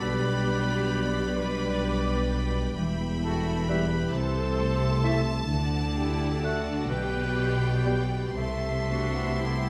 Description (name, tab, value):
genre	classical, slow romantic movement for symphony orchestra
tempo	43 BPM (dotted quarters)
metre	6/8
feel	uneven beats, rubato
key	G major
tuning	A4 = 440 Hz
part	clear studio violin section	melody	0.0-9.7 s	G5 to C6	-40 LUFS	equal	none
part	clear oboe	second line	0.0-9.7 s	D5 to G5	-41 LUFS	equal	none
part	large flute ensemble	second line	0.0-9.7 s	F#5 to D6	-44 LUFS	equal	none
part	rich symphonic violin section	second line	0.0-9.7 s	D5 to A5	-44 LUFS	equal	none
part	warm clarinet	second line	0.0-9.7 s	F#4 to D5	-38 LUFS	equal	none
part	clear symphonic viola section	accompaniment	0.0-9.7 s	D4 to B4	-38 LUFS	equal	none
part	mellow bassoon	accompaniment	0.0-9.7 s	G3 to B3	-40 LUFS	equal	none
part	mellow French horn section	sustained chords	0.0-9.6 s	G3 to G4	-36 LUFS	equal	none
part	concert harp	arpeggios	0.0-9.7 s	B2 to D5	-38 LUFS	equal	none
part	rich studio cello section	bass	0.0-9.7 s	E2 to D3	-33 LUFS	equal	none
part	rich symphonic double bass section	bass	0.0-9.7 s	E1 to D2	-33 LUFS	equal	none
room	moderate scoring stage reverb, RT60 1.8 s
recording	none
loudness	-27 LUFS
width	mono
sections	0.0-9.7 A section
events	none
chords	0.0 G/B; 2.8 Em; 4.1 Am/C; 5.5 D; 6.9 G/B; 8.4 Am/C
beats	| 0.01 1.37 | 2.77 4.14 | 5.51 6.90 | 8.37